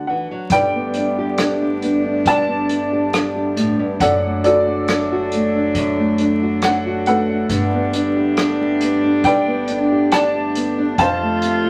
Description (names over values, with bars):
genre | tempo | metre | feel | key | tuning
acoustic folk-pop ballad | 69 BPM | 4/4 | straight | G major | A4 = 440 Hz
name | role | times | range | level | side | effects
warm upright piano | melody | 0.0-11.7 s | F#4 to A5 | -22 LUFS | equal | none
nylon-string guitar | accompaniment | 0.0-11.7 s | F2 to G4 | -23 LUFS | equal | none
upright bass | bass | 0.0-11.7 s | F1 to D2 | -33 LUFS | equal | none
warm cello | second line | 0.5-11.7 s | D4 to F4 | -26 LUFS | equal | none
pedal harmonium | sustained chords | 0.5-11.7 s | C3 to A4 | -29 LUFS | equal | none
unplugged drum kit | drums | 0.5-11.6 s | hi-hat, kick drum, rim click | -26 LUFS | equal | none
room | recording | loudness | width
wet studio reverb, RT60 0.6 s | vinyl crackle | -18 LUFS | mono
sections
0.5-11.7 A section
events
none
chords
0.0 D; 0.5 Gadd9; 4.0 D/F#; 7.5 Gadd9; 11.0 F